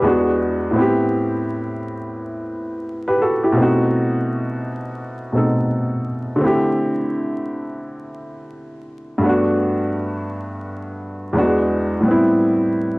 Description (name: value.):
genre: hip hop.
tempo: 85 BPM.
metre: 4/4.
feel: swing 60% on 16ths.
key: unclear.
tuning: A4 = 440 Hz.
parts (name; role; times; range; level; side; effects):
warm upright piano; solo; 0.0-13.0 s; E2 to B4; -18 LUFS; equal; low-pass filter, cassette tape.
room: moderate booth ambience, RT60 0.2 s.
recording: home recording on cassette, vinyl crackle.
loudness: -17 LUFS.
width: side -25 dB against mid.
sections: 0.0-13.0 A section.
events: none.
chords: 0.0 E7; 0.7 Am9; 3.6 B7b9; 6.4 D7sus4; 9.2 Gmaj7; 11.3 E7; 12.0 Am9.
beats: 0.04 | 0.74 1.45 2.15 2.86 | 3.57 4.27 4.98 5.68 | 6.39 7.10 7.80 8.51 | 9.21 9.92 10.63 11.33 | 12.04 12.74.